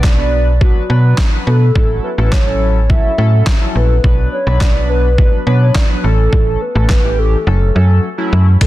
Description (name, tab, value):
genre	dance-pop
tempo	105 BPM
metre	4/4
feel	straight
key	B minor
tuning	A4 = 438 Hz
part	hollow clarinet-like synth lead	melody	0.0-8.7 s	F#4 to E5	-20 LUFS	left 1 dB	chorus, digital delay
part	chorused polysynth	accompaniment	0.0-8.7 s	E3 to D5	-21 LUFS	equal	tremolo, sidechain pumping
part	slap-like FM bass	bass	0.0-8.7 s	F#1 to B2	-12 LUFS	equal	sidechain pumping
part	boom bap sampler-style drum kit	drums	0.0-8.7 s	crash cymbal, handclaps, hi-hat, kick drum, snare drum	-14 LUFS	equal	overdrive
room	little or no reverb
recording	dense, heavily limited modern master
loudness	-10 LUFS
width	side -16 dB against mid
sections	0.0-8.6 A section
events	drums muted 7.5-8.6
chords	0.0 Bm; 1.8 F#m7/A; 4.0 Bm; 6.0 A; 7.5 F#m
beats	0.04 0.61 1.18 | 1.75 2.33 2.90 3.47 | 4.04 4.61 5.18 5.75 | 6.33 6.90 7.47 8.04 | 8.61